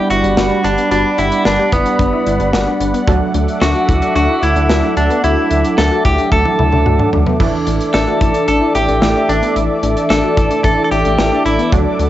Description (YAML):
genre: synth-pop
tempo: 111 BPM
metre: 4/4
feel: straight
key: unclear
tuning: A4 = 440 Hz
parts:
  - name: direct-recorded clean electric guitar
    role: melody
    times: 0.0-11.7 s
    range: B3 to A4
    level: -17 LUFS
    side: equal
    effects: cassette tape, analog delay
  - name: funky polysynth comp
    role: accompaniment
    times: 0.0-12.1 s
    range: E3 to D4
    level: -21 LUFS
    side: right 5 dB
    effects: chorus
  - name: warm analog pad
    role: sustained chords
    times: 0.0-12.1 s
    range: G3 to D6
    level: -19 LUFS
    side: equal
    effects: chorus
  - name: resonant blip pluck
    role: arpeggios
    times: 0.0-12.1 s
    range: B3 to G4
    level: -22 LUFS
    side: left 8 dB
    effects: chorus
  - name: rubbery square bass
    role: bass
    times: 0.1-12.1 s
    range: G1 to D2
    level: -18 LUFS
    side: equal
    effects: transformer saturation
  - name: modern studio drum kit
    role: drums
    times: 0.1-12.1 s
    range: crash cymbal, hi-hat, kick drum, snare drum, toms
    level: -18 LUFS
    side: equal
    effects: cassette tape
room: moderate studio reverb, RT60 0.5 s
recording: home recording on cassette, nothing above 7.8 kHz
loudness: -11 LUFS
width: side -13 dB against mid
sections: 0.0-12.1 A section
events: drum fill 6.3-7.4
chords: 0.0 Gmaj7; 3.1 Dadd9; 7.4 Asus4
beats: 0.37 | 0.91 1.45 2.00 2.54 | 3.08 3.62 4.16 4.70 | 5.24 5.78 6.32 6.86 | 7.40 7.94 8.48 9.02 | 9.56 10.10 10.64 11.18 | 11.72